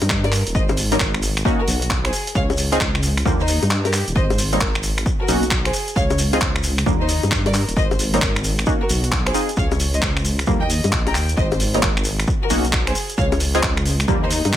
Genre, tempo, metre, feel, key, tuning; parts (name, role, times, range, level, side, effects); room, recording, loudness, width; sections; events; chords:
UK garage, two-step garage; 133 BPM; 4/4; swing 64% on 16ths; Ab major; A4 = 440 Hz
dark detuned saw bass; bass; 0.0-14.6 s; Eb1 to G2; -21 LUFS; equal
breakbeat sampler-style drum kit; drums; 0.0-14.6 s; bongos, finger snaps, handclaps, hi-hat; -23 LUFS; left 1 dB
shekere; percussion; 0.0-14.6 s; -30 LUFS; left 2 dB
electronic kick drum; drums; 0.1-14.6 s; -23 LUFS; equal; overdrive
warm chamber violin section; melody; 0.2-14.5 s; Eb4 to Bb5; -26 LUFS; left 1 dB; ping-pong delay
punchy chord stab; stabs; 0.9-14.2 s; D3 to Ab4; -23 LUFS; equal; chorus, ping-pong delay
digital ambience; -17 LUFS; side -12 dB against mid
0.0-14.6 A section
kick drops out 3.7-4.2
0.0 Eb; 0.5 Abmaj9; 1.4 Bmaj9; 2.1 N.C.; 3.3 Ebmaj9; 4.2 Abmaj9; 5.1 Bmaj9; 5.7 N.C.; 6.9 Ebmaj9; 7.8 Abmaj9; 8.7 Bmaj9; 9.3 Dbmaj9; 10.5 Ebmaj9; 11.4 Abmaj9; 12.3 Bmaj9; 13.0 N.C.